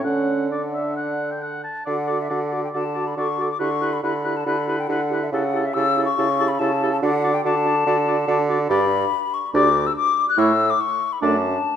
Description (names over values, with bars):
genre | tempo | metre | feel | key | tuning
quick classical-period movement for wind quintet | 141 BPM | 4/4 | rubato | D major | A4 = 440 Hz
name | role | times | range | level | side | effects
mellow hollow silver concert flute | melody | 0.0-11.8 s | E5 to F#6 | -23 LUFS | left 7 dB | none
warm oboe | second line | 0.0-11.4 s | A4 to A5 | -28 LUFS | left 1 dB | none
mellow French horn | accompaniment | 0.0-11.4 s | A3 to F#4 | -28 LUFS | right 1 dB | none
mellow clarinet | accompaniment | 0.0-11.4 s | D4 to A4 | -28 LUFS | right 6 dB | none
clear bassoon | bass | 0.0-11.6 s | D2 to D3 | -24 LUFS | right 2 dB | none
room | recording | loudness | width
moderate concert hall reverb, RT60 1.8 s | nothing above 10.7 kHz | -19 LUFS | side -9 dB against mid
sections
0.0-1.9 A section; 1.9-11.8 B section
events
none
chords
0.0 D; 3.6 Em7/D; 5.3 A7/C#; 7.0 D; 8.7 G; 10.4 A; 11.2 D/F#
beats
| 0.05 0.51 0.97 1.42 | 1.87 2.31 2.75 3.18 | 3.60 4.04 4.47 4.90 | 5.33 5.76 6.18 6.60 | 7.03 7.45 7.87 8.29 | 8.70 9.13 9.55 9.96 | 10.38 10.80 11.22 11.64